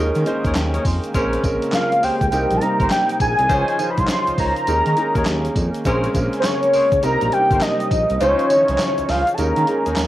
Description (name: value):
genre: R&B, new jack swing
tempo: 102 BPM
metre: 4/4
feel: swing 63% on 16ths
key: unclear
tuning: A4 = 439 Hz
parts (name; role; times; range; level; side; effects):
- clear grand piano; accompaniment; 0.0-10.1 s; E3 to C6; -24 LUFS; right 1 dB; cassette tape
- warm analog pad; sustained chords; 0.0-10.1 s; C3 to C5; -28 LUFS; equal; chorus, cassette tape
- smooth synth bass; bass; 0.0-10.1 s; G1 to Eb3; -23 LUFS; equal; none
- egg shaker; percussion; 0.1-10.1 s; none; -46 LUFS; left 5 dB; none
- clean 12-bit digital drum machine; drums; 0.2-10.1 s; handclaps, hi-hat, kick drum, snare drum, tambourine; -24 LUFS; equal; cassette tape
- mellow horn section; stabs; 0.4-9.9 s; Db4 to Db5; -28 LUFS; left 2 dB; cassette tape, tape echo, plate reverb
- wide unison lead; melody; 1.7-10.0 s; C5 to C6; -18 LUFS; equal; cassette tape, plate reverb
room: moderate small room reverb, RT60 0.5 s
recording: home recording on cassette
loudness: -16 LUFS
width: side -14 dB against mid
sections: 0.0-10.1 A section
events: grand piano fill 0.0-1.1; kick muted 8.2-10.1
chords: 0.0 Eb7sus4; 1.1 Bbm9; 2.3 Cm7; 3.5 Dbmaj9; 4.7 Eb7sus4; 5.8 Bbm9; 7.0 Cm7; 8.2 Dbmaj9; 9.4 Eb7sus4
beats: 0.56 | 1.14 1.73 2.32 2.91 | 3.50 4.08 4.67 5.26 | 5.85 6.44 7.03 7.62 | 8.20 8.79 9.38 9.97